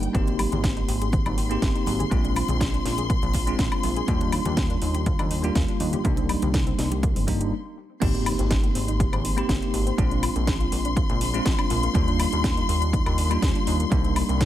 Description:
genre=nu-disco, nu disco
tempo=122 BPM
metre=4/4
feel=straight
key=unclear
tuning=A4 = 438 Hz
part: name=bell-like tine electric piano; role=accompaniment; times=0.0-14.5 s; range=G3 to G4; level=-28 LUFS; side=equal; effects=fast stereo tremolo, sidechain pumping, digital delay
part: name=warm studio string section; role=sustained chords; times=0.0-14.5 s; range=G5 to C6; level=-32 LUFS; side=left 5 dB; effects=sidechain pumping
part: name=chorused synth bass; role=bass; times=0.0-14.5 s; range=G1 to Eb2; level=-26 LUFS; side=equal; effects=none
part: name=house drum kit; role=drums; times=0.0-14.5 s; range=crash cymbal, hi-hat, snare drum, woodblock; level=-31 LUFS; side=equal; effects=overdrive
part: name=soft round pluck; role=arpeggios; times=0.1-14.5 s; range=Bb3 to Ab4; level=-36 LUFS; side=left 3 dB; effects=chorus, sidechain pumping, tape echo
part: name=electronic kick drum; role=drums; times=0.1-14.5 s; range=none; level=-25 LUFS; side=equal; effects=overdrive
part: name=congas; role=percussion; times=0.3-7.4 s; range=none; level=-35 LUFS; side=left 1 dB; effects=none
part: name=impact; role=sound effects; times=8.0-10.0 s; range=none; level=-32 LUFS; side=right 1 dB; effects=none
room=digital ambience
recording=none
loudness=-21 LUFS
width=side -12 dB against mid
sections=0.0-8.0 A section; 8.0-14.5 B section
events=filter sweep on tine electric piano 0.0-8.0; stop 7.5-8.0; drop 8.0-14.5; impact 8.0-10.0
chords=0.1 Abmaj7; 2.1 Bb7; 4.1 Ebmaj7; 6.0 Cm7; 8.0 Abmaj7; 10.0 Bb7; 11.9 Ebmaj7; 13.9 Cm7

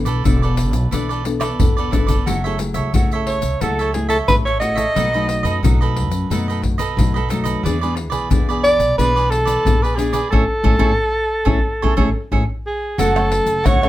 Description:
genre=samba and choro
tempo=90 BPM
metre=4/4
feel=straight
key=A major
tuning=A4 = 438 Hz
part: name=nylon-string guitar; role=accompaniment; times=0.0-13.9 s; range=F#2 to A4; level=-24 LUFS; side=left 3 dB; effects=none
part: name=upright bass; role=bass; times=0.0-13.9 s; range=E1 to F#2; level=-22 LUFS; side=right 1 dB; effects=none
part: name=cavaquinho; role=accompaniment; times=0.1-13.9 s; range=D#4 to F#5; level=-24 LUFS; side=right 5 dB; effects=none
part: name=egg shaker, pandeiro, surdo and tamborim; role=percussion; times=0.1-13.9 s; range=none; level=-20 LUFS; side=left 1 dB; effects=none
part: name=breathy soprano saxophone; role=melody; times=3.3-13.9 s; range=G#4 to D#5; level=-18 LUFS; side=right 1 dB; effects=none
room=moderate studio reverb, RT60 0.5 s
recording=none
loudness=-15 LUFS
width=side -14 dB against mid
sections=0.0-13.0 A section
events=drum fill 1.4-2.3; band accent 10.3-13.0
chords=0.0 E7sus4; 2.3 F#m9; 5.0 B7; 7.6 E7; 10.3 Amaj7; 13.0 F#m

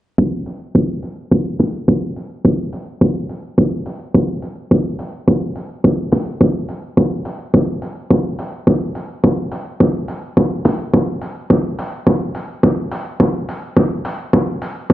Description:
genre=nu-disco, nu disco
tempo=106 BPM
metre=4/4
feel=swing 54% on 16ths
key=none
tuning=none
part: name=electronic kick drum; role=drums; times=0.2-14.9 s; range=none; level=-13 LUFS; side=equal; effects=overdrive, high-pass filter on kick, high-pass filter on room
part: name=electronic hi-hat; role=drums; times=0.5-14.7 s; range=none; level=-33 LUFS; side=equal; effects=overdrive
room=little or no reverb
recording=played on a big sound system in a bare room, large studio reverb, low-pass filter, nothing above 10.4 kHz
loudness=-15 LUFS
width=side -15 dB against mid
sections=0.2-14.9 A section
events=filter sweep 0.2-14.9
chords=none

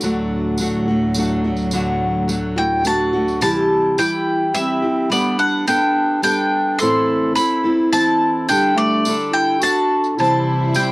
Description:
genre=acoustic folk duo or small band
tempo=106 BPM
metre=3/4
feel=straight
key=unclear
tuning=A4 = 440 Hz
part: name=picked steel-string acoustic guitar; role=accompaniment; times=0.0-10.9 s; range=A2 to C5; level=-20 LUFS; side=equal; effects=cassette tape
part: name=rich studio string section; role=sustained chords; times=0.0-3.4, 10.2-10.9 s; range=D2 to E4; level=-22 LUFS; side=right 1 dB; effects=cassette tape
part: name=tambourine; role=percussion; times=0.0-10.9 s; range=none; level=-28 LUFS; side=right 2 dB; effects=none
part: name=bowl-back mandolin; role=melody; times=2.6-10.9 s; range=D5 to C6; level=-18 LUFS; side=left 1 dB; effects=none
part: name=dark clarinet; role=second line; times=2.6-10.9 s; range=A3 to A4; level=-21 LUFS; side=right 1 dB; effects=cassette tape
room=moderate booth ambience, RT60 0.2 s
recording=home recording on cassette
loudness=-15 LUFS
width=side -22 dB against mid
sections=0.0-3.4 A section; 3.4-10.9 B section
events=none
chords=0.0 D; 3.4 C; 5.1 Gadd9; 6.8 Am; 8.5 Dsus4; 9.6 D; 10.2 C

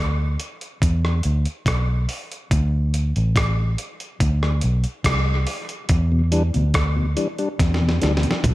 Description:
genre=dub reggae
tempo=71 BPM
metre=4/4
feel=straight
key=unclear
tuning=A4 = 442 Hz
part: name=vintage muted fingered electric bass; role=bass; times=0.0-8.5 s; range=A1 to E2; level=-19 LUFS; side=equal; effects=none
part: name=dusty soul sampler-style drum kit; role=drums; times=0.4-8.5 s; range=hi-hat, kick drum, rim click, snare drum, toms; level=-23 LUFS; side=equal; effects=none
part: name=tonewheel organ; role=accompaniment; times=6.1-8.3 s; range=E2 to D4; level=-24 LUFS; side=left 2 dB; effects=slow rotary speaker
room=light reverb, digital ambience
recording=none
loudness=-19 LUFS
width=side -17 dB against mid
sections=0.0-8.5 A section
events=break 0.0-5.9; drum fill 7.6-8.5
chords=0.0 E5; 2.5 D5; 5.9 Em7

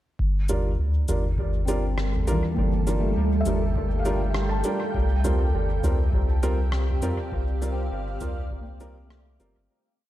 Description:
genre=ambient dub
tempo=101 BPM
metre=4/4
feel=swing 60% on 16ths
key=G dorian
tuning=A4 = 440 Hz
part: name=granular cloud pad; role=sustained chords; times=1.6-9.7 s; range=G3 to G5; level=-32 LUFS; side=right 2 dB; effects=built-in reverb
part: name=warm sub bass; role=bass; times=0.2-9.7 s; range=G1 to F2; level=-25 LUFS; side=equal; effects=none
part: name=electronic kick drum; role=drums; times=0.2-8.6 s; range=none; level=-30 LUFS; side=equal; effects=none
part: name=warm upright piano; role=stabs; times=0.5-9.5 s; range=G3 to Bb4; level=-30 LUFS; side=right 2 dB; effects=dub echo
part: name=soft-mallet drum kit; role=drums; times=0.5-9.5 s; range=cabasa, rim click, toms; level=-32 LUFS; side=left 1 dB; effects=none
part: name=felt-muted upright piano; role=arpeggios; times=1.7-10.1 s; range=E3 to A5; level=-33 LUFS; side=left 3 dB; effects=dub echo
room=light reverb, studio ambience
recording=none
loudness=-22 LUFS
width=side -14 dB against mid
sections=0.2-9.7 groove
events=fade-out 6.5-9.7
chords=0.2 Gm7; 4.9 C7sus4

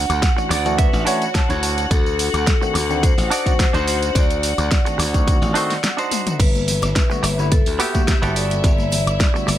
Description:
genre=nu-disco, nu disco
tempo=107 BPM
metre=4/4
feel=swing 53% on 16ths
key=D major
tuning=A4 = 438 Hz
part: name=vibraphone with medium hard mallets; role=melody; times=0.0-9.6 s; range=G4 to F#5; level=-25 LUFS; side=left 2 dB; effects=tape echo
part: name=dark studio string section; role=sustained chords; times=0.0-9.6 s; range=E4 to F#5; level=-27 LUFS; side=left 1 dB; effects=sidechain pumping
part: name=glassy slap bass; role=bass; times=0.0-9.6 s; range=G1 to D2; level=-22 LUFS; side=equal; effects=none
part: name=pop drum kit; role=drums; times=0.1-9.6 s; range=crash cymbal, hi-hat, snare drum, tambourine, toms, woodblock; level=-24 LUFS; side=equal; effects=small room ambience
part: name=direct-recorded clean electric guitar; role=riff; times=0.2-9.5 s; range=B3 to A5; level=-25 LUFS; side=right 4 dB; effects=wide subtle chorus, slapback echo
part: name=electronic kick drum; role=drums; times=0.2-9.3 s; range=none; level=-17 LUFS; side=equal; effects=small room ambience
part: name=bell-like tine electric piano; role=accompaniment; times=0.4-9.5 s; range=D3 to F#4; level=-24 LUFS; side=equal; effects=phaser, sidechain pumping, slapback echo
part: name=congas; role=percussion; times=6.4-9.6 s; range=none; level=-31 LUFS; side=left 5 dB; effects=none
room=little or no reverb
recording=none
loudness=-16 LUFS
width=side -12 dB against mid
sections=0.0-9.6 A section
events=clean electric guitar fill 0.2-1.9; break 5.8-6.4; drum fill 6.1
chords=0.0 Dmaj9; 1.9 D7b9; 6.4 Gmaj9

